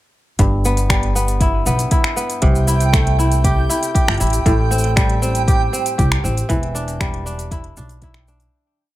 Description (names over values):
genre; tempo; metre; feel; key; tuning
folktronica; 118 BPM; 4/4; straight; G major; A4 = 440 Hz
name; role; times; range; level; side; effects
kora; arpeggios; 0.4-9.0 s; G2 to G4; -21 LUFS; equal; ping-pong delay
upright bass; bass; 0.4-8.5 s; E1 to C2; -18 LUFS; equal; none
electronic kick drum; drums; 0.4-8.1 s; none; -18 LUFS; equal; none
organic electronic drum kit; drums; 0.4-8.5 s; finger snaps, hi-hat, shaker; -23 LUFS; equal; none
backwards swelling texture; texture; 2.5-8.5 s; G5; -26 LUFS; right 8 dB; built-in reverb
room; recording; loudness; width
digital ambience; none; -14 LUFS; side -16 dB against mid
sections
0.4-8.5 groove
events
fade-out 5.8-8.5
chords
0.4 G6; 2.4 C6; 4.5 Am7; 6.5 Em7